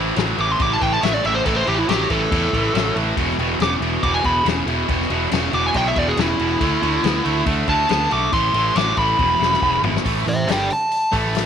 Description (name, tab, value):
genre	blues rock power trio and southern rock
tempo	140 BPM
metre	4/4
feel	straight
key	unclear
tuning	A4 = 440 Hz
part	distorted electric guitar	riff	0.0-11.5 s	E2 to B3	-21 LUFS	right 1 dB	overdrive
part	growling picked electric bass	bass	0.0-11.5 s	E1 to E2	-24 LUFS	right 1 dB	overdrive
part	vintage drum kit	drums	0.2-11.5 s	crash cymbal, hi-hat, kick drum, snare drum, toms	-25 LUFS	left 5 dB	none
part	fuzz lead guitar	melody	0.4-11.1 s	E4 to D6	-21 LUFS	equal	distortion
room	moderate spring reverb, RT60 2.0 s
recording	1960s-style stereo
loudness	-16 LUFS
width	side -8 dB against mid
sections	0.0-10.1 A section; 10.1-11.5 B section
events	lead electric guitar solo 0.0-10.1; drum fill 9.2-10.1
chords	0.0 A5; 3.2 E5; 6.6 Dsus2; 8.3 Am; 9.2 E; 10.1 A5